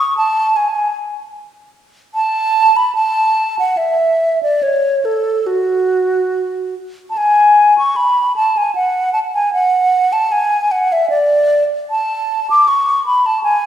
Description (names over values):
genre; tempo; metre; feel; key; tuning
classical, baroque-style fantasia for unaccompanied flute; 70-79 BPM; 3/4; rubato; F# minor; A4 = 439 Hz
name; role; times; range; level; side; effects
mellow hollow silver concert flute; solo; 0.0-13.7 s; F#4 to D6; -12 LUFS; equal; none
room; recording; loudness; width
wet scoring stage reverb, RT60 1.6 s; heard from further back in the room; -12 LUFS; side -10 dB against mid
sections
0.0-7.2 A section; 7.2-13.7 B section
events
none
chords
none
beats
0.57 1.36 | 2.15 2.95 3.78 | 4.63 5.48 6.33 | 7.17 7.97 8.75 | 9.53 10.32 11.10 | 11.91 12.68 13.44